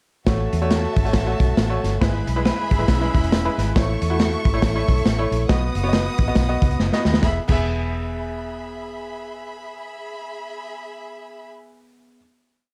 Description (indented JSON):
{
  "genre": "uptempo 1960s-style soul",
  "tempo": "138 BPM",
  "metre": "4/4",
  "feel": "swing 60% on 8ths",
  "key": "E major",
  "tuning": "A4 = 440 Hz",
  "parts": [
    { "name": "warm studio violin section", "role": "second line", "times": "0.3-11.5 s", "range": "F#4 to D#6", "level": "-33 LUFS", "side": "equal", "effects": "none" },
    { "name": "bright upright piano", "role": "accompaniment", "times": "0.3-12.2 s", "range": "G#3 to E5", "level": "-28 LUFS", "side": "equal", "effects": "none" },
    { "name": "vintage muted fingered electric bass", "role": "bass", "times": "0.3-12.2 s", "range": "E1 to E2", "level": "-26 LUFS", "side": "equal", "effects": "none" },
    { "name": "crunchy breakbeat drum kit", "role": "drums", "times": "0.3-7.6 s", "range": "crash cymbal, hi-hat, kick drum, snare drum", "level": "-23 LUFS", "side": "equal", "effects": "none" },
    { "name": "electric guitar through a small old amp", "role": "riff", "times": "2.5-3.6 s", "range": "C#4 to B4", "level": "-30 LUFS", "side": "equal", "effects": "none" }
  ],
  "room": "light reverb",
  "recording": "dark, warm production",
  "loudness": "-20 LUFS",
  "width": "mono",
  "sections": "0.3-7.2 pre-chorus; 7.2-10.7 final chord",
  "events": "drum fill 6.8-7.2",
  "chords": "0.3 A6; 2.0 E/G#; 3.8 A; 5.5 B; 7.2 E"
}